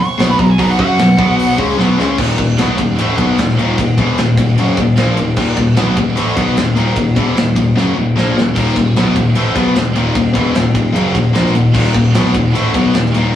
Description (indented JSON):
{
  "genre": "heavy metal",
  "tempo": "151 BPM",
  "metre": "4/4",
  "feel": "straight",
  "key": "Eb phrygian",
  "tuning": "A4 = 440 Hz",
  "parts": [
    { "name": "nasal lead guitar with a parked wah", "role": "melody", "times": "0.0-1.6 s", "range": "F#5 to Db6", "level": "-17 LUFS", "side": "right 3 dB", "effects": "overdrive" },
    { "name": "heavy high-gain guitar", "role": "riff", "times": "0.0-13.3 s", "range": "Eb2 to F#4", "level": "-22 LUFS", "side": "right 4 dB", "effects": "distortion" },
    { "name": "high-gain distorted guitar", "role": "riff", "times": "0.0-13.3 s", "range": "Eb2 to F#4", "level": "-14 LUFS", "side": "left 2 dB", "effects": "distortion" },
    { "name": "modern bright picked electric bass", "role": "bass", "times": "0.0-13.3 s", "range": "Eb1 to F#2", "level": "-18 LUFS", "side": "right 1 dB", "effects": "none" },
    { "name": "tight metal drum kit", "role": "drums", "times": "0.2-13.2 s", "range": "crash cymbal, hi-hat, kick drum, ride cymbal, snare drum, splash cymbal", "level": "-18 LUFS", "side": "equal", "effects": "none" }
  ],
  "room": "moderate small room reverb, RT60 0.5 s",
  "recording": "rough rehearsal-room recording, warm saturation, small room reverb",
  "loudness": "-11 LUFS",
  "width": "side -11 dB against mid",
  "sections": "0.0-2.2 A section; 2.2-13.4 B section",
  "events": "lead electric guitar solo 0.0-2.2; drum fill 1.8-2.2, 7.8-8.6",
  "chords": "0.0 B5; 2.2 Ebm"
}